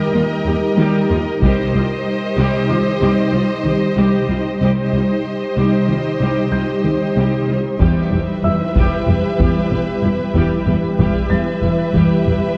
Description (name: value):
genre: cinematic, hybrid orchestral and electronic film score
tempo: 94 BPM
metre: 5/4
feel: straight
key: unclear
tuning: A4 = 445 Hz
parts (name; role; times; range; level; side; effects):
- clear symphonic violin section; second line; 0.0-12.6 s; A#4 to E5; -28 LUFS; equal; none
- clear symphonic viola section; accompaniment; 0.0-12.3 s; G3 to G4; -26 LUFS; equal; none
- ethereal airy pad; sustained chords; 0.0-12.6 s; G3 to C5; -22 LUFS; equal; ensemble chorus, built-in reverb
- clear concert grand piano; texture; 0.0-12.6 s; E5 to A6; -34 LUFS; equal; tape echo
- soft round pluck; arpeggios; 0.1-12.5 s; C3 to B3; -24 LUFS; equal; chorus, tape echo
- warm symphonic cello section; bass; 0.1-12.3 s; C2 to E2; -23 LUFS; equal; none
- taiko ensemble; drums; 1.4-2.7, 7.8-12.5 s; none; -24 LUFS; equal; none
- rich symphonic double bass section; bass; 7.8-12.3 s; E1; -24 LUFS; equal; none
room: wet scoring stage reverb, RT60 1.7 s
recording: worn, warbling old tape, cassette tape, warbly pitch drift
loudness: -17 LUFS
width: mono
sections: 0.0-7.8 A section; 7.8-12.6 B section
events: none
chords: 0.0 D#; 1.4 Cm; 7.8 Em